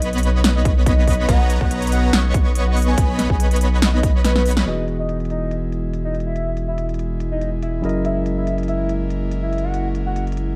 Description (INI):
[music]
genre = future bass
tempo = 142 BPM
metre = 4/4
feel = half-time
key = B major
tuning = A4 = 440 Hz
[part]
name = soft octave-layered synth lead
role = melody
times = 0.0-10.2 s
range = B4 to G#5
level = -30 LUFS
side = equal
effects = chorus, phaser, sidechain pumping, tape echo
[part]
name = dense compressed supersaw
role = riff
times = 0.0-4.6 s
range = B3 to C#6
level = -25 LUFS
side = equal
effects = sidechain pumping, low-pass filter
[part]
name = saturated sub bass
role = bass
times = 0.0-10.6 s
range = E1 to B1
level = -23 LUFS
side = equal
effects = sidechain pumping
[part]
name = big-room dance drum kit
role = drums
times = 0.0-10.5 s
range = hi-hat, snare drum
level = -24 LUFS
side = equal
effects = overdrive, low-pass filter on hats, studio reverb, low-pass filter on snare
[part]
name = electronic kick drum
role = drums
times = 0.7-4.1 s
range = none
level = -21 LUFS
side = equal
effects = overdrive, studio reverb
[part]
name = bright tine electric piano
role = accompaniment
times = 4.6-10.6 s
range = E3 to D#5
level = -28 LUFS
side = equal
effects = sidechain pumping
[part]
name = airy breathy pad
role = sustained chords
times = 4.7-10.6 s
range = G#3 to E4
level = -33 LUFS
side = equal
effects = chorus, sidechain pumping
[sound]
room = light reverb, digital ambience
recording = dark, warm production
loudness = -19 LUFS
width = mono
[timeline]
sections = 0.0-4.7 A section; 4.7-10.6 B section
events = drop 0.0-4.7; kick drops out 4.2-4.7; drum fill 4.2-4.7; band accent 4.6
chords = 0.0 Bmaj7; 4.7 Emaj7; 7.8 F#13